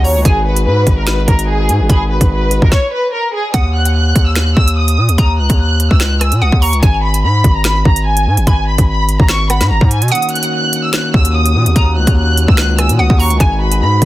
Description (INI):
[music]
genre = hip hop, drill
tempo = 146 BPM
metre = 4/4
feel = half-time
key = Eb phrygian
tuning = A4 = 441 Hz
[part]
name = warm studio violin section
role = melody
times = 0.0-14.1 s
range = Ab4 to Gb6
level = -17 LUFS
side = equal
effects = low-pass filter, digital delay
[part]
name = hollow square pluck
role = second line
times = 0.0-14.1 s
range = Gb5 to Cb6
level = -22 LUFS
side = right 2 dB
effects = chorus, digital delay
[part]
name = chamber organ, flutes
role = sustained chords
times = 0.0-2.7, 10.1-14.1 s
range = Eb3 to Cb5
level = -21 LUFS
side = left 2 dB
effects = none
[part]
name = distorted 808-style bass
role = bass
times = 0.0-14.1 s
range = Ab1 to Cb3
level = -13 LUFS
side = equal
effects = distortion
[part]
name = drill drum kit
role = drums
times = 0.0-14.1 s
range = finger snaps, hi-hat, kick drum, rim click, snare drum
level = -13 LUFS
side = equal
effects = none
[sound]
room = digital ambience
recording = dense, heavily limited modern master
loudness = -10 LUFS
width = side -16 dB against mid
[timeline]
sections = 0.0-3.5 A section; 3.5-14.1 B section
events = stop 2.7-3.5; break 10.1-10.9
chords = 0.3 Abm7; 3.5 Ebm7; 6.8 Abm7; 10.1 Ebm7; 13.4 Abm7